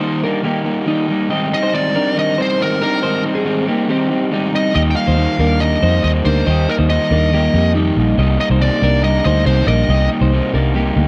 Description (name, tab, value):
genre	indie pop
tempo	140 BPM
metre	4/4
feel	straight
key	Eb major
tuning	A4 = 441 Hz
part	crunchy overdriven guitar	accompaniment	0.0-11.1 s	Ab2 to Eb4	-21 LUFS	equal	none
part	twelve-string electric guitar	arpeggios	0.0-11.1 s	G3 to Eb5	-23 LUFS	equal	subtle chorus
part	fuzz lead guitar	melody	1.5-10.1 s	Bb4 to G5	-23 LUFS	equal	distortion, tape echo
part	vintage muted fingered electric bass	bass	4.8-11.1 s	Bb1 to F2	-18 LUFS	equal	none
room	little or no reverb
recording	dry, close 1970s-style studio recording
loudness	-16 LUFS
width	mono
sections	0.0-11.1 A section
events	none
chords	0.0 Eb; 1.3 Abmaj7; 4.8 Eb; 8.2 Cm7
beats	0.03 0.46 0.88 | 1.31 1.74 2.17 2.60 | 3.03 3.46 3.89 4.32 | 4.75 5.18 5.61 6.04 | 6.47 6.90 7.33 7.76 | 8.19 8.61 9.04 9.47 | 9.90 10.33 10.76